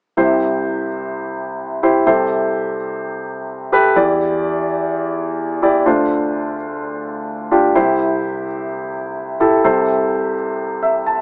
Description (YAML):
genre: pop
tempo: 127 BPM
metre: 4/4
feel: straight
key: C major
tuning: A4 = 440 Hz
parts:
  - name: warm grand piano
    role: accompaniment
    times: 0.2-11.2 s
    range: C2 to A5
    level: -15 LUFS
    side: equal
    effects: none
room: moderate booth ambience, RT60 0.2 s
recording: small speaker sound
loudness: -15 LUFS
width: side -30 dB against mid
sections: 0.2-11.2 A section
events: grand piano fill 10.6-11.2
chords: 0.2 C; 2.1 Am7/C; 4.0 Em7; 5.9 Dm7; 7.8 C